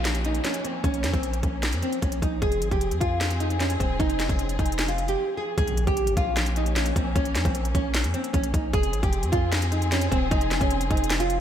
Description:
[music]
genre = hip hop, trap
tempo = 152 BPM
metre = 4/4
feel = half-time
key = unclear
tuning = A4 = 440 Hz
[part]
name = nylon-string guitar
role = melody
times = 0.0-11.4 s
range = C4 to Ab4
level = -28 LUFS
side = right 1 dB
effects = wide subtle chorus, tape echo
[part]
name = dark symphonic string section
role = sustained chords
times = 0.0-11.4 s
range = F3 to Ab4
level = -33 LUFS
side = left 2 dB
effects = none
[part]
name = long sustained 808-style bass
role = bass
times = 0.0-11.4 s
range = Eb1 to F2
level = -27 LUFS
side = equal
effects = none
[part]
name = downlifter and impact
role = sound effects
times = 0.0-2.4, 5.7-7.2 s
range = none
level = -38 LUFS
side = equal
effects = none
[part]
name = trap drum kit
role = drums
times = 0.1-11.4 s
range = handclaps, hi-hat, kick drum, snare drum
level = -27 LUFS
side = equal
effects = none
[sound]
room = moderate plate reverb, RT60 2.1 s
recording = dreamy mix soaked in reverb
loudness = -22 LUFS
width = side -10 dB against mid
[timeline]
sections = 0.0-5.6 A section; 5.6-11.4 B section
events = break 5.2-5.6; impact 5.6-7.2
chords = 0.0 Bbm; 2.4 Fm; 5.6 Bbm; 8.7 Fm

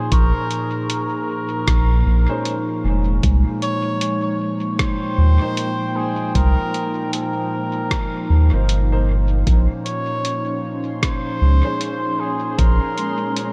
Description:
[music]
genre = ambient dub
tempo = 77 BPM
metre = 4/4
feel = swing 59% on 16ths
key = Bb dorian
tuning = A4 = 440 Hz
[part]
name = trumpet with cup mute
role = melody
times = 0.0-13.5 s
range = Ab4 to Db5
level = -29 LUFS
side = equal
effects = dub echo
[part]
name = warbly tape-like pad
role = sustained chords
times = 0.0-13.5 s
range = Bb2 to G5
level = -27 LUFS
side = equal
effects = chorus, built-in reverb
[part]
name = vibraphone with medium mallets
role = arpeggios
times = 0.1-13.5 s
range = Ab3 to Db6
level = -33 LUFS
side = equal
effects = analog delay
[part]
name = warm sub bass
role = bass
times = 0.1-12.8 s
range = F1 to Eb2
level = -17 LUFS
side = equal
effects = none
[part]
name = electronic kick drum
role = drums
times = 0.1-12.8 s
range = none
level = -23 LUFS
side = equal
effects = overdrive
[part]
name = lo-fi sampler-style drum kit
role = drums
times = 0.1-13.5 s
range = hi-hat, rim click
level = -30 LUFS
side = equal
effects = dub echo
[part]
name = warm upright piano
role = stabs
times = 2.3-11.9 s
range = Ab3 to C5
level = -36 LUFS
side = equal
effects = dub echo
[part]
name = bubbling stepped-filter texture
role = texture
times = 9.5-13.5 s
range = Db4 to C6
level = -33 LUFS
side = equal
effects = chorus, built-in reverb
[sound]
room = moderate huge ambient reverb, RT60 4.4 s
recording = dreamy mix soaked in reverb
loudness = -20 LUFS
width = mono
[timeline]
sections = 0.0-13.5 A section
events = none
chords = 0.0 Bbm7; 3.2 Cm7; 9.5 Bbm9

